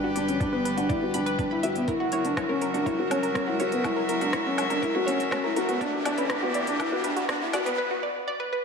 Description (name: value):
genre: piano and strings electronica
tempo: 122 BPM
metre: 4/4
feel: straight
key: unclear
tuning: A4 = 440 Hz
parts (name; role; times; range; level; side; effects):
- dark string quartet; sustained chords; 0.0-7.8 s; E3 to E5; -30 LUFS; equal; sidechain pumping
- analog pluck; arpeggios; 0.0-8.6 s; F#4 to B5; -30 LUFS; right 1 dB; chorus, phaser, sidechain pumping, tape echo
- felt-muted upright piano; riff; 0.0-7.7 s; B3 to F#4; -28 LUFS; left 2 dB; tape echo
- warm sub bass; bass; 0.0-7.8 s; E1 to G1; -46 LUFS; equal; sidechain pumping
- riser; sound effects; 0.5-7.8 s; none; -37 LUFS; right 2 dB; none
- deep house drum kit; drums; 0.2-7.8 s; hi-hat, rim click, woodblock; -34 LUFS; left 1 dB; none
- electronic kick drum; drums; 0.4-7.4 s; none; -33 LUFS; equal; none
room: wet echo chamber reverb, RT60 1.9 s, digital ambience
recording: dark, warm production, high-pass filter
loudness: -24 LUFS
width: side -5 dB against mid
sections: 0.0-8.6 A section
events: build-up 0.0-8.6; filter sweep 0.0-8.6; riser 0.5-7.8; break 7.8-8.6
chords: 0.0 G; 1.9 F#7; 5.8 Em7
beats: 0.41 0.90 1.39 | 1.88 2.38 2.87 3.36 | 3.85 4.34 4.83 5.33 | 5.82 6.31 6.80 7.29 | 7.79 8.28